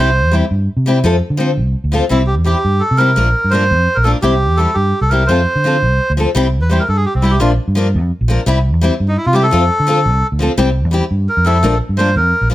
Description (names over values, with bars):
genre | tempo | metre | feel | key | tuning
highlife guitar band | 113 BPM (dotted quarters) | 12/8 | straight | C mixolydian | A4 = 439 Hz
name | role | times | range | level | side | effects
melodica | melody | 0.0-12.5 s | C4 to C5 | -15 LUFS | right 1 dB | none
picked steel-string acoustic guitar | accompaniment | 0.0-12.5 s | F3 to Bb4 | -17 LUFS | left 2 dB | none
fingered electric bass | bass | 0.0-12.5 s | Bb1 to D3 | -14 LUFS | equal | none
room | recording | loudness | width
light reverb | none | -12 LUFS | side -15 dB against mid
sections
0.0-6.3 A section; 6.3-12.5 B section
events
melodica solo 6.3-12.5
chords
0.0 C; 1.0 F; 2.1 C; 3.2 Bb; 4.2 C; 5.3 F; 6.3 C; 7.4 Bb; 8.5 C; 9.5 F; 10.6 C; 11.6 Bb